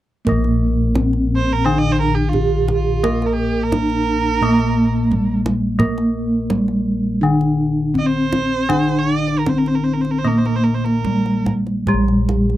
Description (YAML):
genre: Javanese gamelan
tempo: 71-87 BPM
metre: 4/4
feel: straight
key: Bb slendro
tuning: A4 = 436 Hz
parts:
  - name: gamelan-type bronze metallophone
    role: melody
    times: 0.2-12.6 s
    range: Ab3-45c to Bb4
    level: -19 LUFS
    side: right 1 dB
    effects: none
  - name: gamelan-type bronze metallophone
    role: accompaniment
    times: 0.3-12.6 s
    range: Eb3-35c to Bb3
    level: -22 LUFS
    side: left 3 dB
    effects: none
  - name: gamelan-type bossed gongs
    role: bass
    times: 0.3-12.6 s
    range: Bb1 to Bb4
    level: -21 LUFS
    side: left 1 dB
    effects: none
  - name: kendang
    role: percussion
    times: 0.3-12.6 s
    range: none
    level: -24 LUFS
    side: right 2 dB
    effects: none
  - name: warm erhu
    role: second line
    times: 1.4-11.5 s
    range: F4+22c to Eb5-31c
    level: -24 LUFS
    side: right 6 dB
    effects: none
  - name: gamelan-type bronze metallophone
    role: arpeggios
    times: 11.9-12.6 s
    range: Ab4-45c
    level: -30 LUFS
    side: right 8 dB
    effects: none
room: light reverb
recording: dry, close 1970s-style studio recording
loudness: -15 LUFS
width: side -14 dB against mid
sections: 0.3-11.9 A section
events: none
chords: none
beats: | 0.27 0.96 1.65 2.34 | 3.03 3.72 4.41 5.10 | 5.79 6.49 7.20 7.93 | 8.68 9.45 10.23 11.04 | 11.87